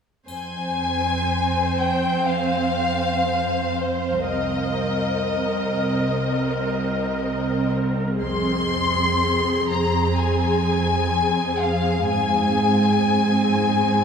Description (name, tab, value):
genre	cinematic, emotional film score for orchestra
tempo	free time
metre	none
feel	none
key	F minor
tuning	A4 = 441 Hz
part	warm symphonic violin section	melody	0.3-14.0 s	C5 to C6	-23 LUFS	left 4 dB	none
part	warm symphonic viola section	accompaniment	0.3-14.0 s	C4 to C5	-24 LUFS	right 1 dB	none
part	warm symphonic cello section	bass	0.3-14.0 s	C2 to Ab2	-24 LUFS	right 2 dB	none
part	triangle	percussion	0.3-2.2 s	none	-50 LUFS	right 2 dB	none
room	wet cathedral reverb, RT60 6.6 s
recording	recorded in a church or concert hall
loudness	-19 LUFS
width	side -6 dB against mid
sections	0.3-14.0 A section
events	none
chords	0.3 Fm; 4.3 Cm7; 8.2 Fm; 12.1 Ab